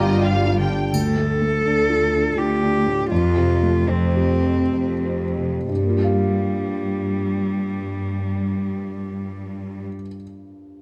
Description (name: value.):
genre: cinematic, emotional film score for orchestra.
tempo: 62-84 BPM.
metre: 3/4.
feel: rubato.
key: G minor.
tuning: A4 = 439 Hz.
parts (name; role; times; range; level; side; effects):
rich cello; melody; 0.0-9.9 s; G3 to A4; -26 LUFS; equal; none.
rich studio violin section; melody; 0.0-0.9 s; Eb5 to G5; -31 LUFS; equal; none.
mellow clarinet; second line; 0.0-0.6 s; D5; -38 LUFS; equal; none.
mellow large flute ensemble; second line; 0.0-0.6 s; F5; -33 LUFS; equal; none.
felt-muted upright piano; accompaniment; 0.0-10.8 s; D2 to F5; -26 LUFS; equal; none.
rich studio viola section; accompaniment; 0.0-0.7 s; G3 to F4; -33 LUFS; equal; none.
mellow French horn section; sustained chords; 0.0-0.6 s; D3 to F4; -30 LUFS; equal; none.
concert harp; arpeggios; 0.0-4.1 s; G2 to G4; -33 LUFS; equal; none.
rich studio cello section; bass; 0.0-9.9 s; D2 to G2; -26 LUFS; equal; none.
rich studio double bass section; bass; 0.0-0.7 s; G1; -27 LUFS; equal; none.
triangle; percussion; 0.9-2.3 s; none; -39 LUFS; equal; none.
room: moderate scoring stage reverb, RT60 1.6 s.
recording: none.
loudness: -21 LUFS.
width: mono.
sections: 0.9-5.7 A section; 5.7-10.8 B section.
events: slowing down 0.0-5.7.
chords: 0.0 Gm7; 0.9 Dm; 3.1 Fadd9; 5.7 Gm7.